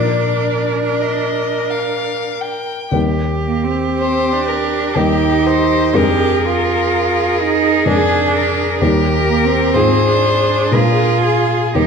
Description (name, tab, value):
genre	classical, slow romantic movement for piano quartet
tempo	61 BPM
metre	3/4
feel	uneven beats, rubato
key	unclear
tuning	A4 = 443 Hz
part	rich violin	melody	0.0-11.9 s	G4 to G5	-19 LUFS	left 6 dB	none
part	clear cello	second line	0.0-11.9 s	Bb3 to G4	-18 LUFS	right 5 dB	none
part	clear viola	accompaniment	0.0-11.9 s	G4 to Bb4	-21 LUFS	right 3 dB	none
part	dark baby grand piano	accompaniment	0.0-11.9 s	Eb2 to Cb5	-18 LUFS	left 2 dB	none
room	wet recital hall reverb, RT60 1.5 s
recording	dark, warm production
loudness	-13 LUFS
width	side -6 dB against mid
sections	0.0-11.9 A section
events	none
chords	0.0 Bb; 2.9 Eb; 6.0 Bb7/F; 8.8 Eb; 9.7 Fm/Ab; 10.7 Bb7b9